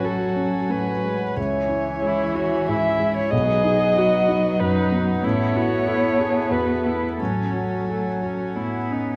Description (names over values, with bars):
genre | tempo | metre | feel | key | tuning
neoclassical piano and strings | 93 BPM | 3/4 | uneven beats, rubato | unclear | A4 = 440 Hz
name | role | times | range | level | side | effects
muted violin | melody | 0.0-8.5 s | A4 to E5 | -26 LUFS | equal | none
muted cello | second line | 0.0-9.2 s | E3 to B3 | -28 LUFS | equal | none
felt-muted upright piano | accompaniment | 0.0-9.2 s | A1 to A4 | -28 LUFS | equal | none
muted viola | accompaniment | 0.0-9.2 s | A3 to G#4 | -32 LUFS | equal | none
pedal harmonium | sustained chords | 0.0-9.2 s | A3 to G#5 | -32 LUFS | equal | none
room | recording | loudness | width
moderate concert hall reverb, RT60 1.9 s | none | -22 LUFS | mono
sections
0.0-9.2 A section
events
none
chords
0.0 F#madd9/A; 1.4 C#m; 3.3 B; 5.2 Aadd9; 7.2 F#madd9/A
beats
0.04 0.70 | 1.37 2.02 2.68 | 3.32 3.96 4.60 | 5.24 5.86 6.51 | 7.19 7.87 8.55